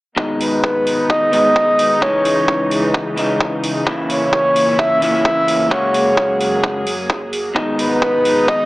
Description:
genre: EDM, festival progressive house.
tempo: 130 BPM.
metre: 4/4.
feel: straight.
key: G# minor.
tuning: A4 = 440 Hz.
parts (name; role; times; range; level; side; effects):
electric guitar through a small old amp; accompaniment; 0.2-8.7 s; B2 to F#4; -20 LUFS; left 1 dB; sidechain pumping.
dark chamber string section; sustained chords; 0.2-8.7 s; F#2 to G#4; -23 LUFS; right 1 dB; sidechain pumping, low-pass filter.
electronic kick drum; drums; 0.2-8.6 s; none; -20 LUFS; equal; high-pass filter on kick, high-pass filter on room.
breathy flute-like synth lead; melody; 0.4-8.7 s; B4 to E5; -16 LUFS; equal; chorus, tape echo.
electronic hi-hat; drums; 0.4-8.3 s; none; -27 LUFS; right 1 dB; none.
room: moderate scoring stage reverb, RT60 1.6 s.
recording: small speaker sound.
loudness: -14 LUFS.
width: side -19 dB against mid.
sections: 0.2-8.7 A section.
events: none.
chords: 0.2 G#m; 2.0 C#madd9; 3.9 A#dim; 5.7 F#add9; 7.6 G#m.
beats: | 0.17 0.64 1.10 1.56 | 2.02 2.48 2.94 3.40 | 3.87 4.33 4.79 5.25 | 5.71 6.17 6.64 7.10 | 7.56 8.02 8.48.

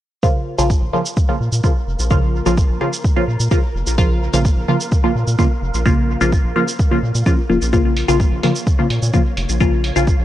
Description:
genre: dub techno.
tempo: 128 BPM.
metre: 4/4.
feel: straight.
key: Bb minor.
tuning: A4 = 439 Hz.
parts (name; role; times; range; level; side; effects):
filtered dub chord stab; stabs; 0.2-10.1 s; Db3 to F4; -18 LUFS; equal; phaser, sidechain pumping, dub echo.
electronic cabasa and hi-hat; drums; 0.2-10.2 s; none; -28 LUFS; right 3 dB; none.
electronic kick drum; drums; 0.2-10.2 s; none; -16 LUFS; equal; none.
wind-like tuned noise texture; texture; 1.1-10.2 s; Bb3 to Db5; -32 LUFS; equal; built-in reverb, sidechain pumping.
round analog bass; bass; 0.6-10.2 s; F1 to Bb2; -20 LUFS; equal; sidechain pumping.
room: light reverb, digital ambience.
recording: dry, gritty hardware recording, transformer saturation.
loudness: -14 LUFS.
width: side -13 dB against mid.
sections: 0.2-10.2 A section.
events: none.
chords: 0.2 Bbm.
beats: | 0.23 0.70 1.17 1.64 | 2.11 2.58 3.04 3.51 | 3.98 4.45 4.92 5.39 | 5.86 6.33 6.79 7.26 | 7.73 8.20 8.67 9.14 | 9.61 10.07.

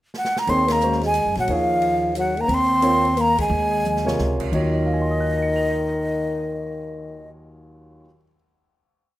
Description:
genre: modal jazz.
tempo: 178 BPM.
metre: 3/4.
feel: swing 64% on 8ths.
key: Eb dorian.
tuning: A4 = 441 Hz.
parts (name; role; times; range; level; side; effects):
open jazz drum kit; drums; 0.1-6.5 s; crash cymbal, cymbal swell, hi-hat, kick drum, ride cymbal, snare drum, toms; -34 LUFS; equal; none.
breathy mellow jazz flute; melody; 0.2-7.3 s; Eb5 to C6; -22 LUFS; equal; none.
breathy trombone; second line; 0.5-7.3 s; Eb3 to C4; -24 LUFS; left 1 dB; none.
warm concert grand piano; accompaniment; 0.5-8.3 s; Eb2 to F7; -28 LUFS; right 1 dB; none.
upright bass; bass; 0.5-8.0 s; Db2 to Bb2; -27 LUFS; equal; none.
room: light reverb, studio ambience.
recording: rough home demo mix.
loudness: -18 LUFS.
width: side -15 dB against mid.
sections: 0.0-0.5 pickup bar; 0.5-4.5 A section; 4.5-6.5 final chord.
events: drum fill 0.1-0.5, 3.8-4.2; band accent 0.6, 3.3.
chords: 0.5 Ebm9; 2.5 Bbm7/Eb; 4.5 Ebm9.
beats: 0.14 | 0.48 0.81 1.15 | 1.49 1.82 2.16 | 2.50 2.83 3.17 | 3.50 3.84 4.18 | 4.51 4.85 5.19 | 5.52 5.86 6.19.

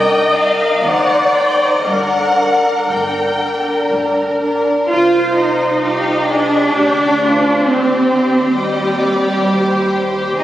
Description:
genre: classical, slow romantic movement for string orchestra.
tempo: 58-67 BPM.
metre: 3/4.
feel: rubato.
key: G minor, C minor from 4.9 s.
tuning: A4 = 435 Hz.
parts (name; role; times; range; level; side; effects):
warm symphonic violin section; melody; 0.0-10.4 s; C5 to G5; -20 LUFS; left 2 dB; none.
warm symphonic violin section; second line; 0.0-10.4 s; D4 to C5; -18 LUFS; equal; none.
warm symphonic viola section; accompaniment; 0.0-10.4 s; G3 to Eb5; -17 LUFS; equal; none.
rich symphonic cello section; bass; 0.0-10.4 s; C2 to F4; -18 LUFS; right 1 dB; none.
warm symphonic double bass section; bass; 0.0-10.4 s; G1 to Eb2; -30 LUFS; right 1 dB; none.
room: wet church reverb, RT60 3.5 s.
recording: recorded on a phone in the room, studio reverb.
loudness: -12 LUFS.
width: side -13 dB against mid.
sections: 0.0-4.9 A section; 4.9-10.4 B section.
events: none.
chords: 0.0 Cm7; 0.9 D7b9; 1.9 Gm; 4.9 Cm; 7.7 Cm/Eb.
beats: 0.85 | 1.87 2.90 3.92 | 4.90 5.83 6.76 | 7.68 8.57 9.47 | 10.38.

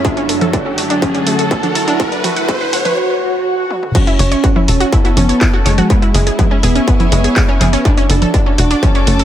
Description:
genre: melodic techno.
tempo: 123 BPM.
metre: 4/4.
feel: straight.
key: F# minor.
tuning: A4 = 439 Hz.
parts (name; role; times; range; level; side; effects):
wide unison lead; melody; 0.0-9.2 s; G#3 to F#4; -19 LUFS; right 1 dB; analog chorus, sidechain pumping, tape echo.
evolving wavetable pad; sustained chords; 0.0-3.0 s; F#2 to A4; -25 LUFS; left 1 dB; chorus, built-in reverb, sidechain pumping.
wide unison pluck; arpeggios; 0.0-9.2 s; G#3 to C#6; -19 LUFS; right 1 dB; sidechain pumping, tape echo.
electronic kick drum; drums; 0.0-8.9 s; none; -14 LUFS; equal; distortion.
techno drum kit; drums; 0.0-9.2 s; congas, crash cymbal, handclaps, hi-hat, toms; -20 LUFS; right 1 dB; sidechain pumping on hats, sidechain pumping on perc, sidechain pumping on toms, sidechain pumping on cymbals, tape echo.
riser and swell; sound effects; 0.0-3.9 s; none; -20 LUFS; right 1 dB; none.
dark studio string section; texture; 0.0-9.2 s; F#3 to D6; -24 LUFS; equal; sidechain pumping.
tight sequencer bass; bass; 4.2-9.2 s; E1 to F#1; -13 LUFS; equal; sidechain pumping.
room: light reverb.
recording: echo-heavy mix, high-pass filter.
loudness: -11 LUFS.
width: side -11 dB against mid.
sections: 0.0-3.9 A section; 3.9-9.2 B section.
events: build-up 0.0-3.9; riser 0.0-3.0; filter sweep on analog synth lead 0.0-3.9; filter sweep 0.0-3.9; swell 3.0-3.9; drum fill 3.7; drop 3.9-9.2.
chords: 0.0 D/F#; 2.0 Bm/F#; 3.9 F#m; 5.9 C#m; 7.9 D.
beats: | 0.05 0.54 1.02 1.51 | 2.00 2.49 2.97 3.46 | 3.95 4.44 4.92 5.41 | 5.90 6.39 6.88 7.36 | 7.85 8.34 8.83.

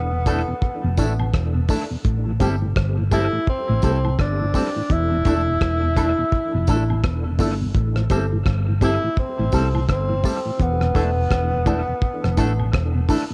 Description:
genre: roots reggae.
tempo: 84 BPM.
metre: 4/4.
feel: swing 60% on 16ths.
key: A minor.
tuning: A4 = 440 Hz.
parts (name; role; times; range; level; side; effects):
warm tenor saxophone; melody; 0.0-12.7 s; B3 to E4; -27 LUFS; equal; cassette tape, tape echo.
hollow-body short-scale fingered electric bass; bass; 0.0-13.1 s; E1 to C2; -24 LUFS; equal; none.
mellow tonewheel organ; accompaniment; 0.1-13.3 s; E2 to D4; -30 LUFS; equal; chorus vibrato, slow rotary speaker, cassette tape, analog delay.
electric guitar with an envelope filter; accompaniment; 0.3-13.2 s; G3 to A4; -33 LUFS; equal; cassette tape, tape echo.
filtered dub chord stab; stabs; 0.3-13.3 s; C4 to A4; -33 LUFS; equal; phaser, cassette tape.
cloth-damped thuddy drum kit; drums; 0.3-13.3 s; hi-hat, kick drum, rim click; -25 LUFS; equal; cassette tape, analog delay.
tambourine and woodblock; percussion; 0.3-13.3 s; none; -40 LUFS; equal; none.
room: light reverb.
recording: home recording on cassette.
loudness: -21 LUFS.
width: mono.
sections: 0.0-13.3 A section.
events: none.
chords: 0.0 E7sus4; 2.0 Am7; 4.9 E7sus4; 7.7 Am7; 10.6 E7sus4.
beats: 0.62 1.33 | 2.05 2.76 3.47 4.18 | 4.90 5.61 6.32 7.03 | 7.75 8.46 9.17 9.88 | 10.59 11.31 12.02 12.73.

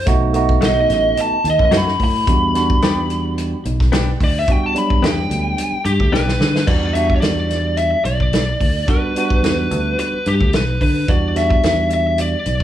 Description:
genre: straight-eighth soul blues.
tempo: 109 BPM.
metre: 4/4.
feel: swing 54% on 16ths.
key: E minor.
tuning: A4 = 443 Hz.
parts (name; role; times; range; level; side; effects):
biting lead guitar; melody; 0.0-12.6 s; G4 to B5; -19 LUFS; left 1 dB; overdrive.
tine electric piano; accompaniment; 0.1-12.4 s; F#3 to F#4; -22 LUFS; right 4 dB; none.
fingered electric bass; bass; 0.1-12.6 s; A1 to D3; -20 LUFS; equal; none.
warm soul drum kit; drums; 0.1-12.6 s; crash cymbal, hi-hat, kick drum, snare drum; -19 LUFS; equal; none.
direct-recorded clean electric guitar; stabs; 0.6-6.3 s; F#3 to G4; -26 LUFS; left 6 dB; none.
room: little or no reverb.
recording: studio reverb.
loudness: -14 LUFS.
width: side -11 dB against mid.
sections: 0.0-6.7 A section; 6.7-12.6 B section.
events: lead electric guitar solo 0.0-6.7; drum fill 6.1-6.7.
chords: 0.1 B7; 2.3 Em7.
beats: | 0.08 0.63 1.18 1.73 | 2.28 2.83 3.38 3.92 | 4.48 5.03 5.58 6.13 | 6.68 7.23 7.78 8.33 | 8.88 9.43 9.98 10.53 | 11.08 11.63 12.18.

